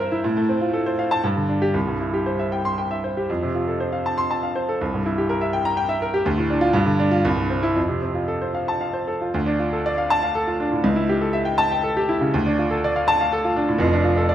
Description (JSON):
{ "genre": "classical, virtuoso piano study", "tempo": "112-125 BPM", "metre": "3/4", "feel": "rubato", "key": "F major, D minor from 9.3 s", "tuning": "A4 = 440 Hz", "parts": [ { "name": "bright baby grand piano", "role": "solo", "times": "0.0-14.3 s", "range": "F1 to C6", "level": "-19 LUFS", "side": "equal", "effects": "none" } ], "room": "wet recital hall reverb, RT60 1.5 s", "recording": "dark, warm production", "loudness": "-19 LUFS", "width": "side -11 dB against mid", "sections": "0.0-9.3 A section; 9.3-14.3 B section", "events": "none", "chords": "0.2 F/A; 1.2 G5; 1.7 C; 3.3 F; 4.8 C7; 6.3 Dm; 6.7 G5; 7.2 C; 7.8 F; 9.3 Dm; 10.9 A7/C#; 12.3 Dm; 13.8 Dm/F", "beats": "| 0.24 0.72 1.23 | 1.74 2.26 2.77 | 3.29 3.80 4.30 | 4.80 5.29 5.77 | 6.26 6.74 7.24 | 7.76 8.29 8.81 | 9.34 9.86 10.36 | 10.85 11.35 11.84 | 12.34 12.83 13.33 | 13.82 14.30" }